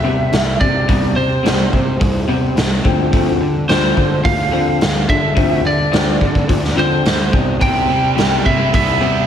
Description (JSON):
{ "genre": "indie rock", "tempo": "107 BPM", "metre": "4/4", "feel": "straight", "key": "C major", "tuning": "A4 = 440 Hz", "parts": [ { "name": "lightly driven lead guitar", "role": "melody", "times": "0.0-9.3 s", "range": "C5 to G5", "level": "-19 LUFS", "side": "right 1 dB", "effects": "tape echo" }, { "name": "electric guitar through a small old amp", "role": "riff", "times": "0.0-9.3 s", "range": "C3 to C4", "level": "-21 LUFS", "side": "left 4 dB", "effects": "wide subtle chorus" }, { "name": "fuzz picked electric bass", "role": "bass", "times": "0.0-9.2 s", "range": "C2 to D3", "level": "-19 LUFS", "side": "equal", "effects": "overdrive" }, { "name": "raw garage drum kit", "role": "drums", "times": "0.3-8.9 s", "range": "hi-hat, kick drum, snare drum", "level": "-17 LUFS", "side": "equal", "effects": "none" }, { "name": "distorted electric guitar", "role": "riff", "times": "7.6-9.3 s", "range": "C3 to E4", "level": "-21 LUFS", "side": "right 11 dB", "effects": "distortion, wide subtle chorus, slapback echo" } ], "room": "light reverb, small room ambience", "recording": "none", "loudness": "-13 LUFS", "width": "side -9 dB against mid", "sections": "0.0-9.3 A section", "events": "none", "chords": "0.0 Cmaj7; 2.8 Dm7; 7.3 Cmaj7", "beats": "0.33 | 0.89 1.45 2.01 2.57 | 3.13 3.69 4.25 4.81 | 5.37 5.93 6.49 7.05 | 7.61 8.18 8.74" }